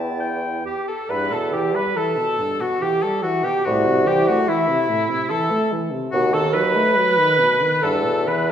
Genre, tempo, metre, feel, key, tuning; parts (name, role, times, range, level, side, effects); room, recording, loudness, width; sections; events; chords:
classical, slow romantic movement for wind quintet; 66-74 BPM; 3/4; rubato; E minor; A4 = 439 Hz
mellow concert flute; melody; 0.0-8.5 s; E5 to B5; -25 LUFS; left 5 dB
clear oboe; second line; 0.0-8.5 s; E4 to A5; -26 LUFS; left 3 dB
clear clarinet; accompaniment; 0.0-8.5 s; E4 to B4; -21 LUFS; right 3 dB
mellow French horn; accompaniment; 0.0-8.5 s; G2 to B3; -25 LUFS; equal
warm bassoon; bass; 0.0-8.5 s; C2 to E2; -23 LUFS; right 1 dB
wet recital hall reverb, RT60 1.6 s; heard from further back in the room; -17 LUFS; side -9 dB against mid
0.0-1.1 A section; 1.1-8.5 A section
0.0 Em; 3.7 Am/C; 6.1 B7/D#; 7.8 Em